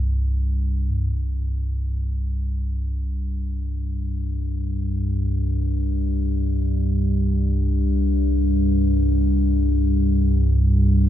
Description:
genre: ambient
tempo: free time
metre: none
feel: none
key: unclear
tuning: A4 = 440 Hz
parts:
  - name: deep rumbling drone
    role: solo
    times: 0.0-11.1 s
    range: C2 to G2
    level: -19 LUFS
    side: equal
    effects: built-in reverb, analog delay
room: light reverb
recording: echo-heavy mix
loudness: -20 LUFS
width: side -11 dB against mid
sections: 0.9-11.1 A section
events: none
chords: 0.0 C5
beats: free time

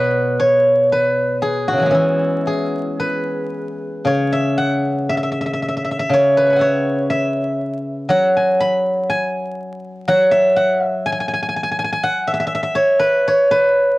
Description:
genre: chinese traditional, Chinese solo plucked strings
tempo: 54-62 BPM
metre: 4/4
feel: rubato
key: E gong mode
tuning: A4 = 440 Hz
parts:
  - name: steel-string zither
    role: solo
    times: 0.0-14.0 s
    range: B2 to C#6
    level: -15 LUFS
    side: equal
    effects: none
room: moderate booth ambience, RT60 0.3 s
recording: worn, warbling old tape, cassette tape, vinyl crackle, warbly pitch drift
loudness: -15 LUFS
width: side -19 dB against mid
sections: 0.0-4.1 A section; 4.1-14.0 B section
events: none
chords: none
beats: 0.91 1.93 3.00 | 4.07 5.09 6.11 7.11 | 8.11 9.11 10.10 11.07 | 12.04 13.04

